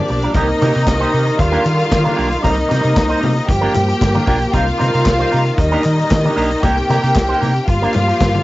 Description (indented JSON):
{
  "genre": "disco",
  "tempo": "114 BPM",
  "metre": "4/4",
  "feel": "straight",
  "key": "C minor",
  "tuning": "A4 = 439 Hz",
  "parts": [
    { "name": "clear symphonic string section", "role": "second line", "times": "0.0-8.4 s", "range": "D4 to G5", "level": "-18 LUFS", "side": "left 2 dB", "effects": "cassette tape" },
    { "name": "rich studio string section", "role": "sustained chords", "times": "0.0-8.4 s", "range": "Bb2 to G4", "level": "-21 LUFS", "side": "equal", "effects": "cassette tape" },
    { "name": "electric guitar with an envelope filter", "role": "accompaniment", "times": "0.1-8.4 s", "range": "G3 to C5", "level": "-21 LUFS", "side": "right 3 dB", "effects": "cassette tape" },
    { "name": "hollow-body short-scale fingered electric bass", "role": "bass", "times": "0.1-8.4 s", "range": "G1 to Eb3", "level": "-18 LUFS", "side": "equal", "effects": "none" },
    { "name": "vintage drum kit", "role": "drums", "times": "0.1-8.4 s", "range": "hi-hat, kick drum, snare drum", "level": "-20 LUFS", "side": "equal", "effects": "cassette tape" },
    { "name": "congas", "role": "percussion", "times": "0.4-8.4 s", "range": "none", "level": "-24 LUFS", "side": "left 3 dB", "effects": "none" },
    { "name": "group handclap", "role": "percussion", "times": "0.9-8.3 s", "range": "none", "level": "-32 LUFS", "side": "left 2 dB", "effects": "none" }
  ],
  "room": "light reverb",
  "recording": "home recording on cassette, nothing above 7.8 kHz",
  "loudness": "-13 LUFS",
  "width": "side -17 dB against mid",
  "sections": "0.0-8.4 A section",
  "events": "none",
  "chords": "0.3 Cm7; 1.4 Ebmaj7; 2.4 Cm7; 3.5 Gm7; 4.5 Cm7; 5.6 Ebmaj7; 6.6 Cm7; 7.7 Gm7"
}